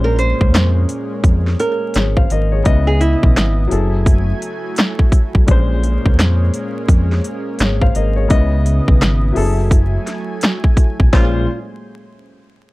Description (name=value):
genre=hip hop, boom-bap hip-hop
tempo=85 BPM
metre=4/4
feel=swing 61% on 16ths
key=Bb minor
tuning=A4 = 437 Hz
part: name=nylon-string guitar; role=melody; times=0.0-3.5, 11.1-11.5 s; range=Fb4 to C5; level=-20 LUFS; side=right 2 dB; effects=high-pass filter, low-pass filter, slapback echo
part: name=dark grand piano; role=accompaniment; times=0.0-11.5 s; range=Bb2 to F5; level=-23 LUFS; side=left 4 dB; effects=high-pass filter, low-pass filter
part: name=lush unison pad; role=sustained chords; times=0.0-11.5 s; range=Bb2 to Ab5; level=-26 LUFS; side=right 1 dB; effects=chorus, high-pass filter, low-pass filter
part: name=deep dub fingered electric bass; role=bass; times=0.0-11.5 s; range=Gb1 to F2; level=-16 LUFS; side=equal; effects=none
part: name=drum and bass drum kit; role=drums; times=0.2-11.3 s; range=hi-hat, kick drum, snare drum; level=-13 LUFS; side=equal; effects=none
room=little or no reverb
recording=vinyl crackle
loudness=-13 LUFS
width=side -20 dB against mid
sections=0.0-11.1 A section; 11.1-12.7 B section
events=none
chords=0.0 Bbm9; 2.7 Dbm9; 3.7 Gbm9; 5.5 Bbm9; 8.3 Dbm9; 9.4 Gbm9; 11.1 Bbm9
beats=0.54 1.25 1.95 | 2.66 3.36 4.07 4.78 | 5.48 6.19 6.89 7.60 | 8.30 9.01 9.72 10.42 | 11.13